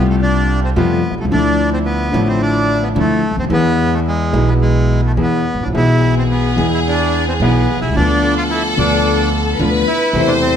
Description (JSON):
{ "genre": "tango", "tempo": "109 BPM", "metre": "4/4", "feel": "rubato", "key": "unclear", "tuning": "A4 = 435 Hz", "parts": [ { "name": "bandoneon", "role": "melody", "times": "0.0-10.6 s", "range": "G#3 to F4", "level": "-19 LUFS", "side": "right 1 dB", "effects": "none" }, { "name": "warm concert grand piano", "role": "accompaniment", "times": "0.0-10.6 s", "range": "G#1 to G#4", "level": "-17 LUFS", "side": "left 3 dB", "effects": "none" }, { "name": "bandoneon", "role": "stabs", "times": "0.0-10.6 s", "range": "F3 to G4", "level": "-28 LUFS", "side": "right 4 dB", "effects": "none" }, { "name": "upright bass", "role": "bass", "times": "0.0-10.6 s", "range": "G#1 to F2", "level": "-18 LUFS", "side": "right 2 dB", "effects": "none" }, { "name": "rich studio violin section", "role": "second line", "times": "5.7-10.6 s", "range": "G#4 to C5", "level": "-19 LUFS", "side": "left 2 dB", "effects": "none" } ], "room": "moderate large studio reverb, RT60 1.3 s", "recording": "none", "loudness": "-13 LUFS", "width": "side -8 dB against mid", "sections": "0.0-10.6 A section", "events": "none", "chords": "0.0 Fadd9; 1.3 Dmadd9; 3.5 E; 8.0 Bdim/D", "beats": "0.22 0.76 | 1.31 1.86 2.41 2.96 | 3.51 4.06 4.62 5.18 | 5.75 6.31 6.86 7.41 | 7.96 8.51 9.06 9.60 | 10.14" }